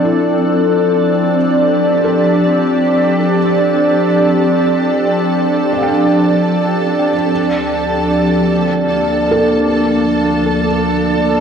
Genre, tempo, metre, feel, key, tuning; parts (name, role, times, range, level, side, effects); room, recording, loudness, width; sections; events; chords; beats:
ambient; free time; D minor; A4 = 442 Hz
glassy FM pad; sustained chords; 0.0-11.4 s; D2 to D5; -12 LUFS; equal; ensemble chorus, built-in reverb
felt-muted upright piano; arpeggios; 0.0-11.4 s; E4 to G5; -23 LUFS; equal; ping-pong delay
warm symphonic violin section; texture; 0.0-11.4 s; A4 to A5; -23 LUFS; equal
wet concert hall reverb, RT60 2.4 s; worn, warbling old tape, cassette tape, warbly pitch drift; -11 LUFS; side -7 dB against mid
0.0-11.4 A section
fade-in on felt piano 0.0-11.4; fade-in on violin section 0.0-11.4
0.0 Dm7; 7.3 Bbmaj7/D
free time